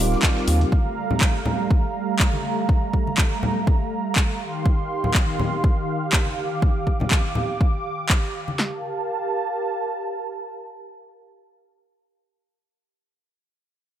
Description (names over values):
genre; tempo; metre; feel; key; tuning
deep house; 122 BPM; 4/4; swing 56% on 16ths; G minor; A4 = 441 Hz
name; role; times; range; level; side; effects
warm analog pad; sustained chords; 0.0-11.7 s; Eb3 to D6; -26 LUFS; right 2 dB; chorus, sidechain pumping
tine electric piano; stabs; 0.0-0.7 s; G3 to Bb4; -26 LUFS; equal; phaser, sidechain pumping, dub echo
rubbery square bass; bass; 0.0-0.6 s; Eb1 to Eb2; -19 LUFS; equal; sidechain pumping
dusty soul sampler-style drum kit; drums; 0.1-0.7 s; hi-hat, snare drum; -35 LUFS; equal; none
house drum kit; drums; 0.2-8.2 s; handclaps, hi-hat; -25 LUFS; equal; overdrive, studio reverb
punchy analog drum machine; drums; 0.2-8.7 s; handclaps, kick drum, snare drum; -20 LUFS; equal; overdrive, studio reverb
congas; percussion; 0.6-8.6 s; none; -29 LUFS; left 2 dB; sidechain pumping on perc
room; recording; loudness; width
light reverb; none; -20 LUFS; side -11 dB against mid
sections
0.0-8.6 A section; 8.6-12.5 B section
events
none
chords
0.0 Eb69; 0.7 Gm9; 4.4 Eb69; 8.6 Gm9